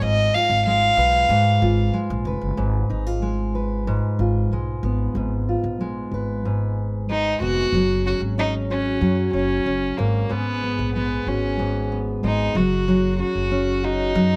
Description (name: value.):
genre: acoustic pop.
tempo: 93 BPM.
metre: 4/4.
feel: straight.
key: unclear.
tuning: A4 = 441 Hz.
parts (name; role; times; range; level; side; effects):
warm violin; melody; 0.0-1.9, 7.1-14.4 s; A#3 to F5; -24 LUFS; equal; none.
fingerpicked steel-string acoustic guitar; accompaniment; 0.0-14.4 s; Ab2 to Cb5; -26 LUFS; equal; none.
upright bass; bass; 0.0-14.4 s; F1 to Ab2; -27 LUFS; equal; none.
room: light reverb.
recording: none.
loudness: -22 LUFS.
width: mono.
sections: 0.0-2.6 A section; 2.6-7.7 B section; 7.7-14.4 C section.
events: none.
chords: 0.0 Fdim; 7.7 F#sus2; 10.0 C#7sus4/G#; 12.5 F#sus2.